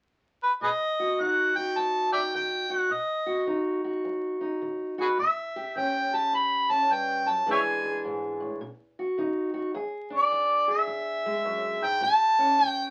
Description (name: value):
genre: acoustic country blues, solo or duo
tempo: 105 BPM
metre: 4/4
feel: swing 64% on 8ths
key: unclear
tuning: A4 = 440 Hz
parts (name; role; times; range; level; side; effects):
- warm harmonica; melody; 0.4-12.9 s; F#4 to B5; -26 LUFS; equal; none
- fingerpicked steel-string acoustic guitar; accompaniment; 0.6-12.9 s; E2 to G#4; -33 LUFS; equal; none
room: moderate studio ambience, RT60 0.5 s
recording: very old 78 rpm record, vinyl crackle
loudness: -27 LUFS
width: mono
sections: 0.6-9.8 A section; 9.8-12.9 B section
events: none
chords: 0.0 N.C.; 0.6 B; 5.2 A7; 7.5 E7; 8.6 B; 9.8 E7; 12.0 A7